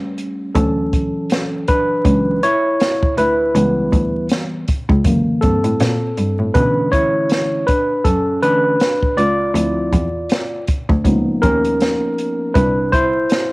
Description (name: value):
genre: hip hop, jazz-hop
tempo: 80 BPM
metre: 4/4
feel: swing 58% on 16ths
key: B minor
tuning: A4 = 440 Hz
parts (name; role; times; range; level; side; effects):
- tine electric piano; accompaniment; 0.0-13.5 s; D3 to G5; -16 LUFS; equal; medium stereo tremolo, cassette tape
- open jazz drum kit; drums; 0.2-13.5 s; hi-hat, kick drum, snare drum; -19 LUFS; equal; cassette tape
- rich cello; bass; 0.6-13.1 s; C2 to B2; -19 LUFS; equal; none
room: light reverb, small room ambience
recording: home recording on cassette, vinyl crackle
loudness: -14 LUFS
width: side -24 dB against mid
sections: 0.0-6.6 A section; 6.6-13.5 B section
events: tine electric piano solo 0.0-6.6, 6.6-13.5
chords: 0.0 D#7#11 (rootless); 0.6 Dmaj9; 3.6 C#m7b5; 5.1 F#7alt; 6.6 Bm11; 9.6 Dm7; 11.1 C#13; 12.6 Cmaj9